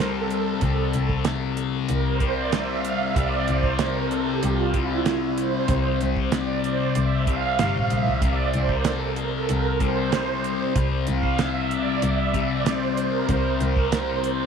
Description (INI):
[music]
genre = psychedelic rock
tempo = 95 BPM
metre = 4/4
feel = straight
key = C mixolydian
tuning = A4 = 443 Hz
[part]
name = string machine, violas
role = sustained chords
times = 0.0-14.5 s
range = E4 to F5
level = -26 LUFS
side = right 8 dB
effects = ensemble chorus
[part]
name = fuzz guitar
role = riff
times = 0.0-14.5 s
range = C3 to C4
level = -25 LUFS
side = left 10 dB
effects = distortion, phaser
[part]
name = warm double bass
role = bass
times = 0.0-14.4 s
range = G1 to C2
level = -28 LUFS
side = equal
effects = none
[part]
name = damped 70s drum kit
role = drums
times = 0.0-14.4 s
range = hi-hat, kick drum, snare drum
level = -27 LUFS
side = right 3 dB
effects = none
[sound]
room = moderate echo chamber reverb, RT60 2.2 s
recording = 1960s-style stereo with parts hard left and right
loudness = -21 LUFS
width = side -6 dB against mid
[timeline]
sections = 0.0-14.5 A section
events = string machine solo 0.0-14.5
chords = 0.0 C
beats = 0.00 | 0.63 1.26 1.90 2.53 | 3.16 3.79 4.43 5.06 | 5.69 6.33 6.96 7.59 | 8.23 8.86 9.49 10.13 | 10.76 11.39 12.03 12.66 | 13.29 13.93